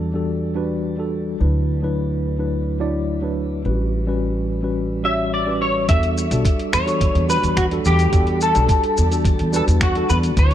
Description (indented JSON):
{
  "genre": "sunset chillout",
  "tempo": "107 BPM",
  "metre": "4/4",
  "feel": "straight",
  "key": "E dorian",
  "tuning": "A4 = 440 Hz",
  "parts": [
    { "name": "mellow tine electric piano", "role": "accompaniment", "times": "0.0-10.5 s", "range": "F#3 to D5", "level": "-24 LUFS", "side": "equal", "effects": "auto-pan, digital delay, shimmer reverb" },
    { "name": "upright bass", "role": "bass", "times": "0.0-10.5 s", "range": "A1 to E2", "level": "-21 LUFS", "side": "equal", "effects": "none" },
    { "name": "semi-hollow electric guitar", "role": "melody", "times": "5.0-10.5 s", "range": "F#4 to E5", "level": "-20 LUFS", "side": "left 1 dB", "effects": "ensemble chorus, tape echo, shimmer reverb" },
    { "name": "dusty soul sampler-style drum kit", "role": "drums", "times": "5.9-10.5 s", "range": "finger snaps, hi-hat, shaker", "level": "-27 LUFS", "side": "equal", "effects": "low-pass filter on hats, low-pass filter on perc, low-pass filter on snare" },
    { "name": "electronic kick drum", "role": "drums", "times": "5.9-10.5 s", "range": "none", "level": "-19 LUFS", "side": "equal", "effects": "none" }
  ],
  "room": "light reverb",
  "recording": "dark, warm production",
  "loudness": "-17 LUFS",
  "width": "side -11 dB against mid",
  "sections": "0.0-5.9 A section; 5.9-10.5 B section",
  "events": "none",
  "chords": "0.0 Em11; 1.4 D69; 3.6 A13; 5.9 Em11"
}